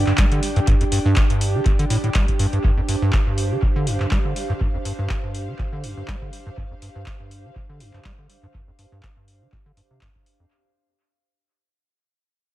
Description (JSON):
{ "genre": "acid house", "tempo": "122 BPM", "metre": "4/4", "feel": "swing 55% on 16ths", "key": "unclear", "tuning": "A4 = 440 Hz", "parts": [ { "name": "acid bass, square", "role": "riff", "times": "0.0-10.5 s", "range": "G1 to G3", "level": "-23 LUFS", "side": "equal", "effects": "tube saturation, tape echo" }, { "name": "airy breathy pad", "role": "texture", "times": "0.0-10.5 s", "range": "D4 to G5", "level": "-28 LUFS", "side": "right 3 dB", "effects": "chorus, sidechain pumping" }, { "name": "electro analog drum machine", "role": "drums", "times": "0.1-10.4 s", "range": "handclaps, hi-hat", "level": "-29 LUFS", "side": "equal", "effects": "analog delay" }, { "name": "electronic kick drum", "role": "drums", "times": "0.2-10.2 s", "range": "none", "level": "-21 LUFS", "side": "equal", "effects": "none" } ], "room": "little or no reverb", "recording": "echo-heavy mix", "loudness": "-18 LUFS", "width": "side -15 dB against mid", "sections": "0.0-10.5 A section", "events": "fade-out 0.0-10.5", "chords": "0.0 G5", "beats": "0.18 | 0.67 1.17 1.66 2.15 | 2.64 3.13 3.62 4.12 | 4.61 5.10 5.59 6.08 | 6.58 7.07 7.56 8.05 | 8.54 9.03 9.53 10.02" }